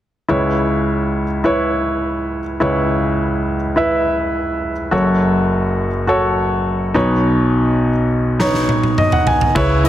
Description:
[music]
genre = piano-driven pop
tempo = 104 BPM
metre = 4/4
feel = straight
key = C# minor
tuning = A4 = 440 Hz
[part]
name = clear baby grand piano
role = accompaniment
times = 0.3-9.9 s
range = F#1 to G#5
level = -15 LUFS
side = equal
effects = none
[part]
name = huge arena drum kit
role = drums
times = 8.4-9.9 s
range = crash cymbal, hi-hat, kick drum, snare drum, toms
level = -18 LUFS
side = right 1 dB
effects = none
[part]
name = vintage muted fingered electric bass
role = bass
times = 9.6-9.9 s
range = C#2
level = -16 LUFS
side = equal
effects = none
[sound]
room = moderate concert hall reverb, RT60 2.2 s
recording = dense, heavily limited modern master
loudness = -14 LUFS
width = side -12 dB against mid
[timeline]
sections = 0.3-9.6 A section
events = drum fill 8.4-9.6; grand piano fill 8.7-9.6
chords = 0.3 C#m7; 4.9 F#m; 7.0 Badd9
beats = | 0.29 0.87 1.45 2.03 | 2.61 3.19 3.77 4.34 | 4.92 5.50 6.08 6.66 | 7.24 7.82 8.40 8.98 | 9.56

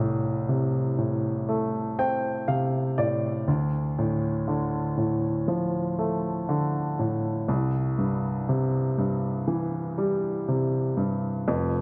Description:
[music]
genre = pop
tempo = 60 BPM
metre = 4/4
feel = straight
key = unclear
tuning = A4 = 442 Hz
[part]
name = warm grand piano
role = solo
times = 0.0-11.8 s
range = F1 to G5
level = -26 LUFS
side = equal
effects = delay
[sound]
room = moderate concert hall reverb, RT60 2.1 s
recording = none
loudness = -27 LUFS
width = mono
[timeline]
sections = 0.0-11.5 A section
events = grand piano fill 1.5-3.5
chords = 0.0 F69/C; 3.5 Dm; 7.5 C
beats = 0.48 1.48 2.48 | 3.48 4.48 5.48 6.48 | 7.48 8.48 9.48 10.48 | 11.48

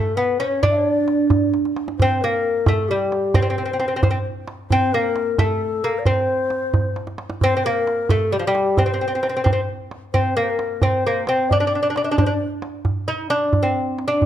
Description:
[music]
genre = Persian modal ensemble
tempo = 88 BPM (dotted quarters)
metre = 6/8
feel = straight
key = unclear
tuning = A4 = 440 Hz
[part]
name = lute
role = melody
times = 0.0-14.3 s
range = F3 to Eb4+45c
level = -20 LUFS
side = right 1 dB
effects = none
[part]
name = breathy low ney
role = second line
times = 0.0-12.4 s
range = G4 to E5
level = -24 LUFS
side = left 5 dB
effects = none
[part]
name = tombak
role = percussion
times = 0.4-14.3 s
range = none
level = -21 LUFS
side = right 2 dB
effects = none
[sound]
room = moderate recital hall reverb, RT60 1.3 s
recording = dark, warm production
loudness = -18 LUFS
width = side -10 dB against mid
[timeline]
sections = 0.0-2.0 A section; 2.0-12.9 B section; 12.9-14.3 C section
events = drum fill 1.5-2.0, 7.0-7.4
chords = none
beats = | 0.62 1.30 | 1.98 2.66 | 3.34 4.02 | 4.70 5.38 | 6.06 6.74 | 7.42 8.10 | 8.78 9.46 | 10.14 10.82 | 11.50 12.18 | 12.86 13.54 | 14.22

